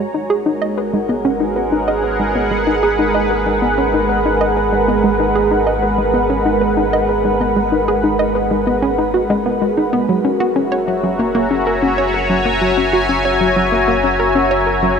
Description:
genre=ambient, sequencer-driven space music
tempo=95 BPM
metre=4/4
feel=straight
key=G# minor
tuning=A4 = 440 Hz
part: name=sweeping resonant pad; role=sustained chords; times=0.0-15.0 s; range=G#3 to A#5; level=-16 LUFS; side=equal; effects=chorus, shimmer reverb
part: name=hollow square pluck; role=riff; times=0.0-15.0 s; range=F#3 to D#5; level=-18 LUFS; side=equal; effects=chorus, ping-pong delay, shimmer reverb
part: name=round analog bass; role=bass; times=0.0-15.0 s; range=F#1 to G#1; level=-26 LUFS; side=equal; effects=none
room=wet huge ambient reverb, RT60 8.3 s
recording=none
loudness=-13 LUFS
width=side -6 dB against mid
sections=0.0-15.0 A section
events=none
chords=0.0 G#m7; 10.1 F#7

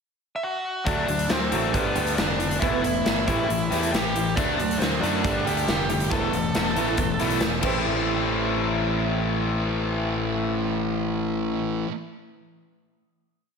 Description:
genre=quiet-loud alternative rock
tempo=138 BPM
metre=4/4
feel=straight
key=A minor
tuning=A4 = 444 Hz
part: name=dark smooth lead guitar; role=melody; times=0.4-7.4 s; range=B3 to A5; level=-28 LUFS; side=right 2 dB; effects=overdrive, slapback echo
part: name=fingerpicked swing-style acoustic guitar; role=arpeggios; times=0.9-11.9 s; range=A2 to C5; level=-32 LUFS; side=right 8 dB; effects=slapback echo
part: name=overdriven electric guitar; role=riff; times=0.9-11.9 s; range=G2 to E4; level=-27 LUFS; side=left 8 dB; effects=none
part: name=fuzz fingered electric bass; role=bass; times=0.9-11.8 s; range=E1 to F#2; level=-30 LUFS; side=equal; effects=overdrive
part: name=big rock drum kit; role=drums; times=0.9-7.7 s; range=crash cymbal, hi-hat, kick drum, snare drum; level=-27 LUFS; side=equal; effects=none
part: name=thick fuzz guitar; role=riff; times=4.4-11.9 s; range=E2 to D4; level=-30 LUFS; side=right 10 dB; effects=distortion
room=moderate lush hall reverb, RT60 1.8 s, small room reverb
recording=big arena sound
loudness=-22 LUFS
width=side -5 dB against mid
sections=0.0-0.9 pickup bar; 0.9-7.8 pre-chorus; 7.8-11.3 final hit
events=drum fill 7.6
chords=0.0 N.C.; 0.9 D; 1.7 Gadd9; 2.6 Esus4; 3.3 A5; 4.4 D; 5.2 Gsus2; 6.1 Esus4; 7.6 Am7

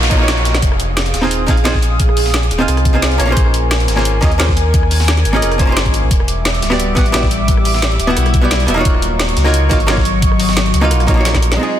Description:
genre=liquid drum and bass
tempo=175 BPM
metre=4/4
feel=swing 54% on 16ths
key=unclear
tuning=A4 = 440 Hz
part: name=archtop guitar, miked and amplified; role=accompaniment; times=0.0-11.8 s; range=Ab3 to Gb5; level=-18 LUFS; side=right 1 dB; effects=ping-pong delay
part: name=warm analog pad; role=sustained chords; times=0.0-11.8 s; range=Gb3 to Eb6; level=-21 LUFS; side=equal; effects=chorus
part: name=sub bass with octave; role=bass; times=0.0-11.6 s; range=D1 to Eb2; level=-16 LUFS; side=equal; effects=none
part: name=breakbeat sampler-style drum kit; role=drums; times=0.0-11.5 s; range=hi-hat, snare drum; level=-24 LUFS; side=equal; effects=overdrive, high-pass filter on hats, high-pass filter on snare, high-pass filter on room
part: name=noise sweep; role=sound effects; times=0.0-0.6 s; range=none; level=-22 LUFS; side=right 1 dB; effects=none
part: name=drum and bass drum kit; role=drums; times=0.1-11.6 s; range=hi-hat, rim click, snare drum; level=-21 LUFS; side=equal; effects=overdrive, low-pass filter on hats, low-pass filter on snare
part: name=electronic kick drum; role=drums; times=0.1-11.4 s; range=none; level=-15 LUFS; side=equal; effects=overdrive
room=light reverb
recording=dense, heavily limited modern master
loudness=-11 LUFS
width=side -11 dB against mid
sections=0.0-11.6 A section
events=noise sweep 0.0-0.6; kick drops out 0.3-0.6; drum fill 0.3-0.6, 11.3-11.6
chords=0.0 Ebm7; 0.6 Fm7; 3.2 Bbm7; 6.1 Em7; 8.9 Ebm7

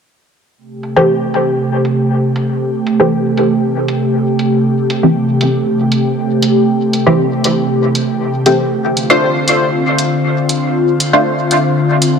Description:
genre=dub techno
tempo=118 BPM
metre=4/4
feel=straight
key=A minor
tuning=A4 = 441 Hz
part: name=airy breathy pad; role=sustained chords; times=0.6-12.2 s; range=C3 to G4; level=-14 LUFS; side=equal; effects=chorus, phaser
part: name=electronic hi-hat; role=drums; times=0.8-12.1 s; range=none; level=-20 LUFS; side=right 1 dB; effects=low-pass filter on hats, low-pass filter on room
part: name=filtered dub chord stab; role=stabs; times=1.0-11.3 s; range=E3 to C5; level=-15 LUFS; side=equal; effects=chorus, phaser, dub echo
room=moderate huge ambient reverb, RT60 4.3 s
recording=none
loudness=-11 LUFS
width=side -6 dB against mid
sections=0.6-12.2 A section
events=filter sweep on drum 0.6-12.2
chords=0.6 Am7; 8.7 Dm7

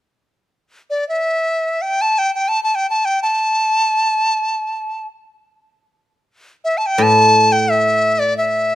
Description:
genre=chinese traditional, Chinese chamber ensemble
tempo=free time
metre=none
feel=none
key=unclear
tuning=A4 = 437 Hz
part: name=bright reedy dizi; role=melody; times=0.9-8.8 s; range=D5 to A5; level=-14 LUFS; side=equal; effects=none
part: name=guzheng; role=accompaniment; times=7.0-8.8 s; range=A2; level=-18 LUFS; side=equal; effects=none
room=light reverb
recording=close, detailed microphones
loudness=-14 LUFS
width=side -13 dB against mid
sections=0.3-7.0 A section; 7.0-8.8 B section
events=none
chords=none

